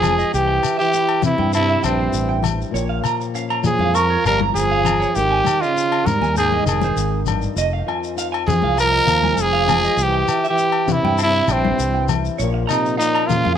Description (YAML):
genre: highlife guitar band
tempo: 99 BPM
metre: 4/4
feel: straight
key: unclear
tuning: A4 = 440 Hz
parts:
  - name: growling trumpet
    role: melody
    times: 0.0-13.6 s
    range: C4 to Bb4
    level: -18 LUFS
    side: equal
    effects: none
  - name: mellow trombone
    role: second line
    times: 0.0-13.6 s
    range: G2 to G3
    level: -26 LUFS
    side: right 9 dB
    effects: tape echo
  - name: flamenco guitar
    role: accompaniment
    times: 0.0-13.6 s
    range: F2 to F4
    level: -28 LUFS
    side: left 8 dB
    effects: none
  - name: clean electric guitar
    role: arpeggios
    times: 0.0-13.5 s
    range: C5 to Db6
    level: -26 LUFS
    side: right 8 dB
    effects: phaser, tape echo
  - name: fingered electric bass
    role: bass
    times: 0.0-13.6 s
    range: F1 to C3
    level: -22 LUFS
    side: equal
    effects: none
  - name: agogo bells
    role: percussion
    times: 0.0-13.3 s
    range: none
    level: -29 LUFS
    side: left 12 dB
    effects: none
  - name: congas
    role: percussion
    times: 0.0-13.6 s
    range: none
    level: -26 LUFS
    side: left 9 dB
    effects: none
  - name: shekere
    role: percussion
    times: 0.0-13.4 s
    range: none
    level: -28 LUFS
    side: left 7 dB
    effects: none
room: moderate echo chamber reverb, RT60 1.5 s, small room ambience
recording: 1960s-style stereo with parts hard left and right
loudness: -16 LUFS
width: side -9 dB against mid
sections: 0.0-13.6 A section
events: none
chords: 0.3 C; 2.7 Bbm; 5.2 Ab; 7.6 Fm7; 10.0 C; 12.4 Bbm